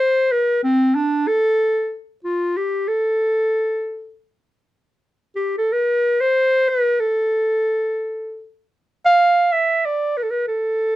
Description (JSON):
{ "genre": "arabic", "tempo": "94 BPM", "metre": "3/4", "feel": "straight", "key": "A maqam bayati", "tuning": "A4 = 440 Hz", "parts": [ { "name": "mellow clarinet", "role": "solo", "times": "0.0-11.0 s", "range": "C4 to F5", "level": "-17 LUFS", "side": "equal", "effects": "none" } ], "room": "light reverb", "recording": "close, detailed microphones", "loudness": "-17 LUFS", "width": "side -15 dB against mid", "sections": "0.0-4.8 A section; 4.8-11.0 B section", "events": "none", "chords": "none" }